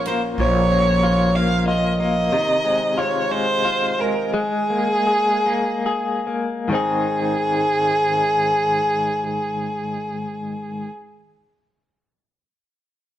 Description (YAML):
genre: pop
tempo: 45-62 BPM (dotted quarters)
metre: 6/8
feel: straight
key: Ab major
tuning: A4 = 442 Hz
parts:
  - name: direct-recorded clean electric guitar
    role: accompaniment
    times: 0.0-11.0 s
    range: Ab2 to Ab4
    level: -24 LUFS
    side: left 2 dB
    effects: tremolo
  - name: fingerpicked steel-string acoustic guitar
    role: arpeggios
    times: 0.0-4.9 s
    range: Eb3 to F4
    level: -28 LUFS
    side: right 2 dB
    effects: none
  - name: upright bass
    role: bass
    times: 0.0-2.3 s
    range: Bb1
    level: -20 LUFS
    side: equal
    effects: none
  - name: rich violin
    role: melody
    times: 0.1-10.9 s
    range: Ab4 to F5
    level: -20 LUFS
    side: right 1 dB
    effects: none
room: moderate stone room reverb, RT60 1.2 s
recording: rough rehearsal-room recording, tube saturation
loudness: -18 LUFS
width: side -12 dB against mid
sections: 0.0-6.7 A section; 6.7-12.0 B section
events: slowing down 2.3-6.7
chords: 0.0 Bbm; 2.3 Fm7/C; 4.3 Absus2; 6.7 Ab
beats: | 0.39 1.35 | 2.32 3.31 | 4.34 5.46 | 6.71 8.02 | 9.34 10.65